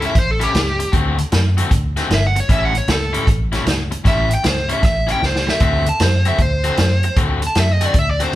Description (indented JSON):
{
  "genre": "electric blues shuffle",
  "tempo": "154 BPM",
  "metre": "4/4",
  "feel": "swing 65% on 8ths",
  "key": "unclear",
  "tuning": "A4 = 440 Hz",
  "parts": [
    { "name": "dark smooth lead guitar", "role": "melody", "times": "0.0-8.3 s", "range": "G4 to A5", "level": "-20 LUFS", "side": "equal", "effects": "overdrive" },
    { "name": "overdriven semi-hollow guitar", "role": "riff", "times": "0.0-8.3 s", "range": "A2 to F#4", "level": "-23 LUFS", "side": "left 3 dB", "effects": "none" },
    { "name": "vintage muted fingered electric bass", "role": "bass", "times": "0.0-8.2 s", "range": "G1 to F#2", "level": "-19 LUFS", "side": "equal", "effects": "none" },
    { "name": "vintage drum kit", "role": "drums", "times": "0.0-8.3 s", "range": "hi-hat, kick drum, snare drum", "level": "-19 LUFS", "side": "equal", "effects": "none" }
  ],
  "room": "light reverb",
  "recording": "band playing live in one room",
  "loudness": "-14 LUFS",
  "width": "side -14 dB against mid",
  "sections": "0.0-8.4 A section",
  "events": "drum fill 5.2-5.6",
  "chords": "0.0 A7; 0.9 D7; 2.5 A7; 5.6 D7"
}